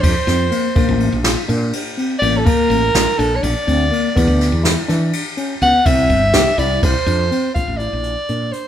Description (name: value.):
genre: progressive instrumental, band music in an uneven meter.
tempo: 247 BPM (eighths).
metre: 7/8.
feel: straight.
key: Bb lydian.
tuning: A4 = 440 Hz.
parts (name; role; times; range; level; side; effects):
clear soprano saxophone; melody; 0.0-8.7 s; A4 to Gb5; -18 LUFS; right 1 dB; none.
tine electric piano; arpeggios; 0.0-8.6 s; Bb3 to G4; -21 LUFS; left 3 dB; none.
woody fretless electric bass; bass; 0.0-8.5 s; G1 to E3; -19 LUFS; equal; none.
jazz brush drum kit; drums; 0.0-8.6 s; hi-hat, kick drum, ride cymbal, snare drum; -20 LUFS; equal; none.
room: moderate large studio reverb, RT60 1.1 s.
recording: band playing live in one room.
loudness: -14 LUFS.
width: side -10 dB against mid.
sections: 0.0-7.6 A section; 7.6-8.7 B section.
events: soprano saxophone solo 0.0-7.6.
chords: 0.0 F5; 0.8 Bbmaj7; 4.2 E5; 5.9 Dm11/G (rootless); 7.6 Bbmaj7.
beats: 0.03 0.27 0.51 | 0.76 1.00 1.24 1.49 1.73 1.97 2.21 | 2.46 2.70 2.94 3.19 3.43 3.67 3.91 | 4.16 4.40 4.64 4.88 5.13 5.37 5.61 | 5.86 6.10 6.34 6.59 6.83 7.07 7.32 | 7.56 7.80 8.05 8.29 8.53.